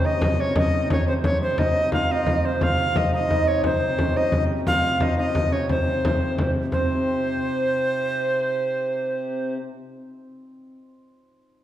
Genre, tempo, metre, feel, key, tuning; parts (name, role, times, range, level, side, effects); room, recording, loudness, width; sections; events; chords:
medieval dance; 117 BPM (dotted quarters); 6/8; straight; C phrygian; A4 = 440 Hz
bright reedy tenor recorder; melody; 0.0-9.5 s; C5 to F5; -24 LUFS; equal
hammered dulcimer; second line; 0.0-10.7 s; C4 to G4; -29 LUFS; right 2 dB
pedal harmonium; drone; 0.0-9.6 s; C3; -30 LUFS; left 2 dB
frame drum; percussion; 0.2-6.9 s; -23 LUFS; equal
wet recital hall reverb, RT60 1.6 s; heard from further back in the room; -20 LUFS; side -12 dB against mid
0.0-6.7 A section; 6.7-8.8 B section